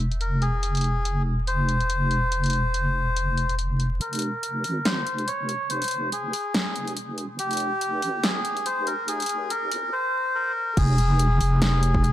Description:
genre	deep dubstep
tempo	142 BPM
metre	4/4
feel	swing 56% on 16ths, half-time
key	F minor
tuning	A4 = 436 Hz
part	deep soft wobble bass	bass	0.0-12.1 s	F1 to Ab1	-24 LUFS	equal	chorus, high-pass filter
part	deep house drum kit	drums	0.0-12.1 s	crash cymbal, hi-hat, snare drum	-29 LUFS	equal	low-pass filter on hats, low-pass filter on snare, low-pass filter on cymbals, low-pass filter on room
part	melodica	melody	0.2-12.1 s	G4 to Db5	-26 LUFS	left 1 dB	low-pass filter, dub echo
part	electronic kick drum	drums	10.8-12.0 s	none	-23 LUFS	equal	none
room	light reverb, digital ambience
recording	vinyl crackle, high-pass filter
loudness	-22 LUFS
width	side -13 dB against mid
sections	0.0-4.0 A section; 4.0-10.8 B section; 10.8-12.1 C section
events	build-up 4.0-10.8; drop 10.8-12.1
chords	0.0 Fm

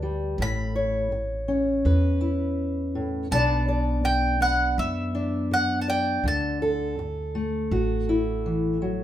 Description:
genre	acoustic folk duo or small band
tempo	82 BPM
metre	4/4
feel	straight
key	A mixolydian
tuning	A4 = 439 Hz
part	mandolin	melody	0.0-8.4 s	E5 to B5	-26 LUFS	right 1 dB	none
part	fingerpicked steel-string acoustic guitar	accompaniment	0.0-9.0 s	A2 to D5	-26 LUFS	left 1 dB	none
part	upright bass	bass	0.0-9.0 s	A1 to F#2	-28 LUFS	equal	none
room	moderate large studio reverb, RT60 0.8 s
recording	minimal, uncompressed stereo recording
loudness	-22 LUFS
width	side -12 dB against mid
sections	0.0-9.0 A section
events	none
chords	0.4 Aadd9; 3.3 Bm; 6.3 Dadd9

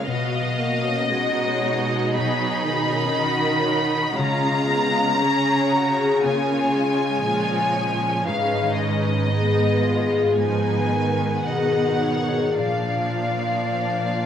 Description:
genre	cinematic, emotional film score for orchestra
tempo	58 BPM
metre	4/4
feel	uneven beats, rubato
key	unclear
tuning	A4 = 440 Hz
part	rich symphonic violin section	melody	0.0-14.3 s	D#5 to B5	-24 LUFS	left 2 dB	none
part	warm symphonic violin section	second line	0.0-14.3 s	C#4 to E#5	-29 LUFS	equal	none
part	clear symphonic viola section	accompaniment	0.0-14.3 s	C#3 to D#4	-26 LUFS	right 2 dB	none
part	concert harp	arpeggios	0.0-14.3 s	G#2 to E#5	-25 LUFS	left 5 dB	none
part	rich symphonic cello section	bass	0.0-14.3 s	G#2 to D#3	-27 LUFS	right 3 dB	none
room	moderate recital hall reverb, RT60 1.4 s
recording	none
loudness	-19 LUFS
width	side -9 dB against mid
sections	0.0-14.3 A section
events	none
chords	0.1 Badd9; 4.2 C#; 8.3 G#m; 12.6 A#

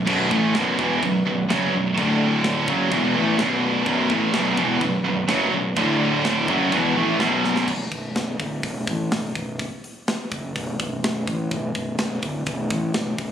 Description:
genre	heavy metal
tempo	126 BPM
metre	4/4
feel	straight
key	B minor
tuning	A4 = 440 Hz
part	distorted electric guitar	riff	0.0-7.7 s	B1 to A3	-24 LUFS	left 6 dB	distortion
part	heavy high-gain guitar	riff	0.0-7.7 s	B1 to A3	-22 LUFS	right 8 dB	distortion
part	heavy high-gain guitar	riff	0.0-7.7 s	B1 to A3	-26 LUFS	equal	distortion
part	fuzz fingered electric bass	bass	0.0-13.3 s	B0 to A1	-27 LUFS	equal	overdrive
part	warm studio string section	sustained chords	0.1-7.7 s	D3 to D5	-33 LUFS	left 1 dB	none
part	tight metal drum kit	drums	0.1-13.3 s	china cymbal, crash cymbal, hi-hat, kick drum, snare drum	-28 LUFS	equal	none
room	light reverb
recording	recorded on a phone in the room, club reverb, compression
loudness	-20 LUFS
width	side -9 dB against mid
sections	0.0-7.7 A section; 7.7-13.3 B section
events	drum fill 7.4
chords	0.0 Bm; 2.0 D5; 2.7 Bm; 5.8 D5; 6.5 Bm; 7.7 N.C.

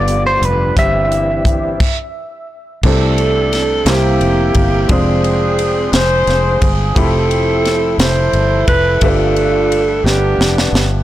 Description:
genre	slow gospel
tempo	58 BPM (dotted quarters)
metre	6/8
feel	straight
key	C major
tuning	A4 = 440 Hz
part	clean electric guitar	melody	0.0-2.5 s	B4 to E5	-17 LUFS	equal	tape echo
part	clear concert grand piano	accompaniment	0.0-11.0 s	G2 to B5	-20 LUFS	equal	none
part	mellow French horn section	sustained chords	0.0-1.8 s	E3 to E4	-29 LUFS	left 1 dB	none
part	percussive tonewheel organ	sustained chords	0.0-1.8 s	D3 to G4	-25 LUFS	right 1 dB	fast rotary speaker, chorus vibrato
part	fingered electric bass	bass	0.0-11.0 s	F1 to C2	-17 LUFS	equal	none
part	tight funk drum kit	drums	0.1-10.9 s	crash cymbal, hi-hat, kick drum, ride cymbal, snare drum	-18 LUFS	equal	none
part	warm saxophone section	melody	2.8-10.9 s	Bb3 to C5	-15 LUFS	right 1 dB	none
room	studio ambience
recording	blown-out, overdriven recording, overdrive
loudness	-11 LUFS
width	side -14 dB against mid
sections	0.0-2.8 A section; 2.8-11.0 B section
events	stop 1.8-2.8; drum fill 10.0-11.0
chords	0.0 G7; 0.8 C/G; 1.8 N.C.; 2.8 C69; 3.9 C7; 4.9 Fm6; 7.0 Fmaj9#11

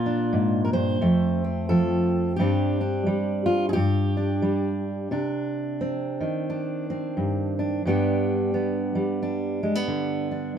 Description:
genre	folk, solo fingerstyle acoustic guitar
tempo	88 BPM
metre	4/4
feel	swing 60% on 8ths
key	C harmonic minor from 5.1 s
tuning	A4 = 442 Hz
part	fingerpicked steel-string acoustic guitar	solo	0.0-10.6 s	F2 to C5	-22 LUFS	equal	none
room	light reverb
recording	band playing live in one room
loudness	-22 LUFS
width	side -8 dB against mid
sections	0.0-5.1 A section; 5.1-10.6 B section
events	none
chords	0.0 Bb; 1.0 F; 2.4 Gsus4; 3.7 G5; 5.1 Cmadd9; 7.8 G

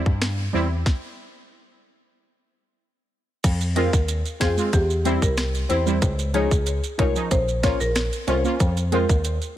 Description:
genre	dancehall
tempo	93 BPM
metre	4/4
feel	straight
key	F minor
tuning	A4 = 440 Hz
part	synth brass stab	accompaniment	0.0-9.1 s	F3 to F4	-27 LUFS	right 3 dB	chorus
part	bell-like tine electric piano	bass	0.1-9.4 s	Bb1 to G2	-24 LUFS	equal	phaser
part	island pop drum kit	drums	0.1-9.6 s	crash cymbal, finger snaps, hi-hat, kick drum, rim click, snare drum	-23 LUFS	equal	overdrive, vintage 12-bit sampler grit
part	maracas and timbales	percussion	3.4-9.6 s	none	-34 LUFS	right 9 dB	none
part	marimba with medium mallets	melody	3.8-9.1 s	G4 to C5	-26 LUFS	equal	none
part	nylon-string guitar	arpeggios	3.8-9.1 s	Ab3 to Db5	-30 LUFS	left 8 dB	digital delay
room	small room ambience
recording	none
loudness	-20 LUFS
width	side -12 dB against mid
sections	0.0-3.4 A section; 3.4-9.6 B section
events	stop 0.9-3.4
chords	0.0 C; 0.9 N.C.; 3.4 Fm; 4.7 C; 6.0 Dbadd9; 7.3 Bbm; 8.6 Fm

